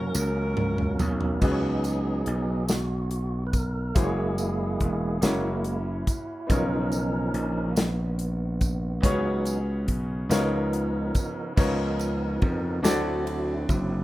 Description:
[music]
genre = slow gospel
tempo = 47 BPM (dotted quarters)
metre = 6/8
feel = straight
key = unclear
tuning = A4 = 440 Hz
[part]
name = warm saxophone section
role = melody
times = 0.0-1.4 s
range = C#4 to A#4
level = -34 LUFS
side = left 2 dB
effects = plate reverb
[part]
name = bright upright piano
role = accompaniment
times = 0.0-14.0 s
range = C#3 to D5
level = -31 LUFS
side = left 1 dB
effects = plate reverb
[part]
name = tonewheel organ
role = sustained chords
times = 0.0-14.0 s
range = E#3 to B4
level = -32 LUFS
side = right 2 dB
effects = slow rotary speaker, plate reverb
[part]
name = gritty slap bass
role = bass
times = 0.0-14.0 s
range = E1 to E#2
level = -28 LUFS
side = equal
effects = overdrive
[part]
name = tambourine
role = percussion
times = 0.1-14.0 s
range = none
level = -38 LUFS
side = right 4 dB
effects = none
[part]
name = modern studio drum kit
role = drums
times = 0.6-13.9 s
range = crash cymbal, hi-hat, kick drum, ride cymbal, snare drum, toms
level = -26 LUFS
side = equal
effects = none
[sound]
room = moderate studio reverb, RT60 0.6 s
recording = rough home demo mix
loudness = -24 LUFS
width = side -16 dB against mid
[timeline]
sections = 0.0-1.4 A section; 1.4-11.6 B section; 11.6-14.0 C section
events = drum fill 0.0-1.4; tonewheel organ solo 1.4-11.6, 11.6-14.0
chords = 0.0 F#; 1.4 C#9sus4; 4.0 F#9; 5.2 F#7; 6.5 Bmaj9#11; 9.0 C#7sus4; 10.3 C#13; 12.8 D7

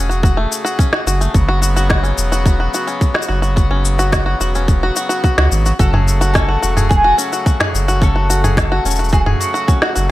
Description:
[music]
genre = folktronica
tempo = 108 BPM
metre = 4/4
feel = straight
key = F# minor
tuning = A4 = 441 Hz
[part]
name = accordion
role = sustained chords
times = 0.0-10.1 s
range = C#3 to G#4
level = -23 LUFS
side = left 2 dB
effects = none
[part]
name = bluegrass banjo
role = arpeggios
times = 0.0-10.1 s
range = A3 to G#4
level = -21 LUFS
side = left 1 dB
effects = ping-pong delay
[part]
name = warm sub bass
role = bass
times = 0.0-10.1 s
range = E1 to C#2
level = -16 LUFS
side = equal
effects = none
[part]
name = organic electronic drum kit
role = drums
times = 0.1-10.1 s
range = cabasa, snare drum, toms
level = -20 LUFS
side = equal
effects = none
[part]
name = electronic kick drum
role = drums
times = 0.2-9.8 s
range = none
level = -14 LUFS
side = equal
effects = none
[part]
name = mandolin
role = melody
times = 5.8-9.9 s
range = F#4 to A4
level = -19 LUFS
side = equal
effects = ping-pong delay
[sound]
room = digital ambience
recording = none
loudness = -13 LUFS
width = side -16 dB against mid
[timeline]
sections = 0.0-10.1 A section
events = none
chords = 0.0 F#madd9; 1.3 Bsus2; 5.8 F#madd9

